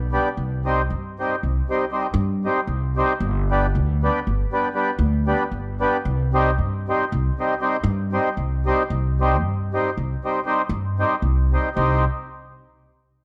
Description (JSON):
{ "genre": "balkan folk, Balkan wedding band", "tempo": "231 BPM (eighths)", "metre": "11/8", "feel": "straight", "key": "C harmonic minor", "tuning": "A4 = 438 Hz", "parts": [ { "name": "upright bass", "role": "bass", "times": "0.0-12.0 s", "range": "G1 to G2", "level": "-24 LUFS", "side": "equal", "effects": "none" }, { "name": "mellow accordion", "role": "accompaniment", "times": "0.1-12.0 s", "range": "G3 to C5", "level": "-25 LUFS", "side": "equal", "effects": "none" } ], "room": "moderate recital hall reverb, RT60 1.5 s", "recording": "dark, warm production", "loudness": "-22 LUFS", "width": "mono", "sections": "0.0-11.8 A section; 11.8-13.2 B section", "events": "none", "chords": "0.4 Cm; 3.2 G; 6.1 Cm", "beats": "0.11 | 0.37 0.63 0.89 1.14 1.40 1.66 1.92 2.18 2.43 2.69 2.95 | 3.21 3.47 3.73 3.98 4.24 4.50 4.76 5.02 5.28 5.54 5.79 | 6.05 6.31 6.57 6.83 7.09 7.35 7.61 7.87 8.13 8.39 8.65 | 8.91 9.17 9.43 9.69 9.95 10.21 10.47 10.73 10.99 11.25 11.51 | 11.77 12.03" }